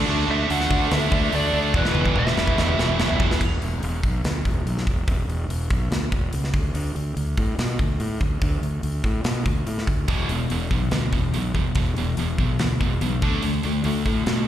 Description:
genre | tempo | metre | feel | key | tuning
hard rock | 144 BPM | 4/4 | straight | unclear | A4 = 438 Hz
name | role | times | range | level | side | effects
cranked stack guitar | riff | 0.0-3.4, 10.1-14.5 s | E2 to D4 | -27 LUFS | left 9 dB | overdrive, spring reverb
high-gain distorted guitar | riff | 0.0-3.4 s | E2 to D4 | -32 LUFS | equal | none
scooped high-gain guitar | riff | 0.0-3.4, 10.1-14.5 s | E2 to D4 | -26 LUFS | right 10 dB | distortion, slapback echo
fuzz fingered electric bass | bass | 0.0-14.4 s | E1 to B2 | -24 LUFS | equal | overdrive
biting lead guitar | melody | 0.3-3.2 s | B4 to F#5 | -27 LUFS | equal | overdrive, plate reverb, slapback echo, tape echo
tight metal drum kit | drums | 0.5-14.4 s | crash cymbal, hi-hat, kick drum, snare drum, toms | -26 LUFS | equal | none
room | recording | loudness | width
little or no reverb | live gig heard through the venue's PA, recital hall reverb | -20 LUFS | side -11 dB against mid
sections
0.0-3.4 A section; 3.4-14.5 B section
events
drum fill 1.7-3.4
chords
0.0 D; 1.7 E5; 6.5 D5; 10.1 E5; 13.2 D5

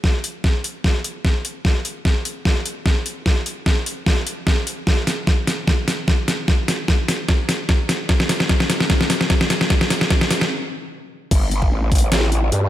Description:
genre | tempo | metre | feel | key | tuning
heavy wobble dubstep | 149 BPM | 4/4 | swing 54% on 16ths, half-time | unclear | A4 = 440 Hz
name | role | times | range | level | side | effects
dubstep drum kit | drums | 0.0-12.6 s | crash cymbal, hi-hat, snare drum | -20 LUFS | equal | overdrive
electronic kick drum | drums | 0.0-12.0 s | none | -18 LUFS | equal | overdrive
growl bass | bass | 11.3-12.7 s | G1 to G2 | -18 LUFS | equal | distortion, chorus, overdrive
room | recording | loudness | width
moderate lush hall reverb, RT60 1.7 s, digital ambience | none | -17 LUFS | side -13 dB against mid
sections
0.0-11.3 A section; 11.3-12.7 B section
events
build-up 0.0-11.3; drum fill 0.0-10.5; stop 10.5-11.3; drop 11.3-12.7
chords
none

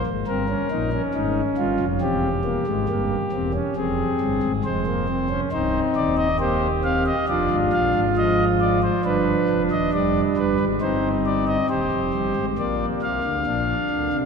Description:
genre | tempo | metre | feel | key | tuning
classical, baroque-style 4-part fugue for pipe organ | 68 BPM | 4/4 | straight | unclear | A4 = 444 Hz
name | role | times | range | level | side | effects
pipe organ, principal | solo | 0.0-14.3 s | C1 to F5 | -20 LUFS | equal | none
room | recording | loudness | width
wet cathedral reverb, RT60 4.2 s | none | -20 LUFS | side -5 dB against mid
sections
0.0-12.6 A section; 12.6-14.3 B section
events
none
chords
0.3 Gdim; 2.0 C7/E; 3.8 Fm; 5.5 Cm; 7.3 Ddim/F; 9.1 G7; 10.8 Cm/G; 12.6 Bb

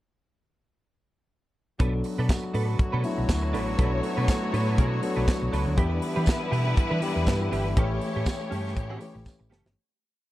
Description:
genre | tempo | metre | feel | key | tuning
disco | 121 BPM | 4/4 | swing 56% on 16ths | unclear | A4 = 440 Hz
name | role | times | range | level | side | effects
clean electric guitar | accompaniment | 1.8-9.7 s | C#4 to B4 | -35 LUFS | right 5 dB | ensemble chorus
tine electric piano | accompaniment | 1.8-9.8 s | E3 to A4 | -31 LUFS | left 2 dB | none
muted French horn section | sustained chords | 1.8-9.7 s | C#3 to F#4 | -36 LUFS | equal | none
hollow-body short-scale fingered electric bass | bass | 1.8-9.7 s | G1 to E3 | -28 LUFS | equal | none
tight funk drum kit | drums | 1.8-9.8 s | hi-hat, kick drum, snare drum | -25 LUFS | equal | none
tambourine | percussion | 2.3-9.4 s | none | -43 LUFS | right 5 dB | none
clear studio string section | second line | 2.8-9.7 s | G3 to C#5 | -32 LUFS | left 1 dB | none
room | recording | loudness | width
studio reverb | dark, warm production | -23 LUFS | side -15 dB against mid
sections
1.8-9.8 pre-chorus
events
fade-out 7.8-9.8; drum fill 9.3-9.8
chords
1.8 Bm7; 5.8 Em7; 7.8 A7

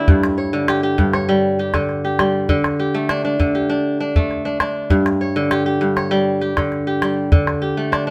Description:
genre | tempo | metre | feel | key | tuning
west african traditional, West African string and xylophone music | 99 BPM | 4/4 | straight | unclear | A4 = 435 Hz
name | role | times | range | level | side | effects
kora | arpeggios | 0.0-8.1 s | G2 to C#5 | -20 LUFS | equal | none
calabash | percussion | 0.1-8.1 s | none | -20 LUFS | equal | none
room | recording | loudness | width
light reverb | band playing live in one room | -18 LUFS | mono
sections
0.0-8.1 A section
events
none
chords
0.1 G5; 2.5 D5; 4.9 G5; 7.3 D5

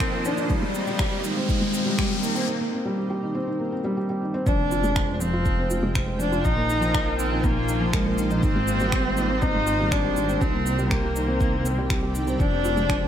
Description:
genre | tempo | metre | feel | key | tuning
piano and strings electronica | 121 BPM | 4/4 | straight | F dorian | A4 = 435 Hz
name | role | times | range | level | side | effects
warm cello | melody | 0.0-13.1 s | G3 to Eb4 | -26 LUFS | equal | none
granular cloud pad | sustained chords | 0.0-13.1 s | Bb3 to Ab5 | -33 LUFS | equal | built-in reverb, sidechain pumping
felt-muted upright piano | riff | 0.0-13.1 s | Eb3 to C5 | -27 LUFS | equal | none
electronic finger snaps and shaker | drums | 0.0-13.0 s | none | -33 LUFS | equal | none
electronic kick drum | drums | 0.0-13.0 s | none | -26 LUFS | equal | none
riser and impact | sound effects | 0.0-6.4 s | none | -32 LUFS | equal | none
dark detuned saw bass | bass | 4.5-13.1 s | F1 to C2 | -27 LUFS | equal | tube saturation, sidechain pumping
room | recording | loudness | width
light reverb | none | -21 LUFS | side -10 dB against mid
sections
0.0-4.5 A section; 4.5-13.1 B section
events
build-up 0.0-4.5; riser 0.0-2.5; break 2.5-4.5; drop 4.5-13.1; impact 4.5-6.5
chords
0.0 Abmaj7; 2.5 Cm7; 4.5 Fm; 6.5 Bbsus4; 8.4 Abmaj7; 10.4 Cm7; 12.4 Fm

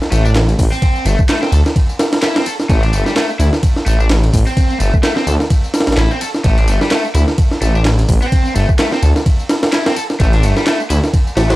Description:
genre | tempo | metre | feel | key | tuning
breakbeat, breaks | 128 BPM | 4/4 | swing 57% on 16ths | unclear | A4 = 440 Hz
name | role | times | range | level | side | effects
breakbeat sampler-style drum kit | drums | 0.0-11.6 s | hi-hat, kick drum, ride cymbal, snare drum | -15 LUFS | equal | studio reverb
electronic tambourine and handclaps | drums | 0.0-11.6 s | none | -27 LUFS | left 1 dB | overdrive, studio reverb
impact | sound effects | 0.0-0.8 s | none | barely audible | none | none
cranked stack guitar | riff | 0.1-11.6 s | G3 to A4 | -21 LUFS | left 1 dB | overdrive, analog delay
detuned saw bass | bass | 0.1-11.6 s | G1 to D2 | -13 LUFS | equal | none
room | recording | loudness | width
digital ambience | dry, gritty hardware recording, transformer saturation | -12 LUFS | side -18 dB against mid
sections
0.0-11.6 A section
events
impact 0.0-0.8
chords
0.0 Am

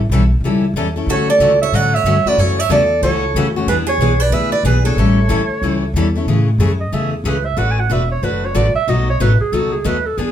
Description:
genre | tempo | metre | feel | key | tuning
acoustic string swing (jazz manouche) | 184 BPM | 4/4 | swing 60% on 8ths | A major from 6.3 s | A4 = 438 Hz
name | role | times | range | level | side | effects
upright bass | bass | 0.0-10.3 s | E1 to A2 | -17 LUFS | equal | none
picked steel-string acoustic guitar | accompaniment | 0.1-10.3 s | B2 to B4 | -19 LUFS | left 3 dB | none
warm clarinet | melody | 1.1-10.3 s | G#4 to G#5 | -18 LUFS | right 3 dB | none
picked steel-string acoustic guitar | second line | 1.1-5.9 s | G#4 to D5 | -23 LUFS | right 2 dB | none
room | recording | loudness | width
wet studio reverb, RT60 0.6 s | band playing live in one room | -13 LUFS | side -10 dB against mid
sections
0.0-6.3 A section; 6.3-10.3 B section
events
clarinet solo 6.3-10.3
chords
0.0 A7; 1.1 Dmaj7; 2.4 F#m7; 3.7 E7; 5.0 A7; 6.3 Amaj7; 7.6 D69; 8.9 B9

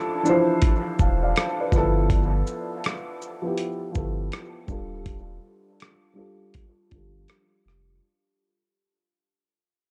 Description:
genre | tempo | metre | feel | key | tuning
lo-fi hip hop | 81 BPM | 4/4 | swing 61% on 16ths | unclear | A4 = 440 Hz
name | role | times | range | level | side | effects
felt-muted upright piano | accompaniment | 0.0-8.0 s | E3 to A5 | -27 LUFS | equal | low-pass filter, dub echo
dusty soul sampler-style drum kit | drums | 0.3-7.8 s | hi-hat, kick drum, rim click, shaker | -27 LUFS | equal | none
warm sub bass | bass | 1.0-8.0 s | Eb1 to G1 | -28 LUFS | equal | none
room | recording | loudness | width
light reverb | echo-heavy mix | -24 LUFS | mono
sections
0.0-8.0 A section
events
fade-out 0.0-8.0; filter sweep on felt piano 0.0-8.0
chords
0.0 Dm9; 1.7 G13; 4.7 Ebmaj9#11

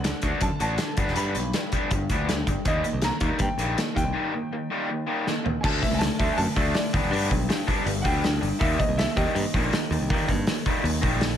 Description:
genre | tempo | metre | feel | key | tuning
indie rock | 161 BPM | 4/4 | straight | unclear | A4 = 440 Hz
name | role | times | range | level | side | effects
clear upright piano | melody | 0.0-10.3 s | G4 to B5 | -31 LUFS | equal | slapback echo
raw garage guitar | riff | 0.0-11.4 s | D3 to F#4 | -27 LUFS | left 1 dB | overdrive
modern bright picked electric bass | bass | 0.0-11.4 s | E1 to Eb3 | -28 LUFS | equal | none
loose indie drum kit | drums | 0.0-11.3 s | crash cymbal, hi-hat, kick drum, snare drum, toms | -26 LUFS | equal | none
room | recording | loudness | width
little or no reverb | none | -22 LUFS | side -10 dB against mid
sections
0.0-5.6 A section; 5.6-11.4 B section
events
break 4.1-5.6; drum fill 5.3-5.6; upright piano solo 5.6-11.4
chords
0.0 D; 1.0 G; 2.7 Eb; 5.6 D5; 6.9 G; 8.6 Eb

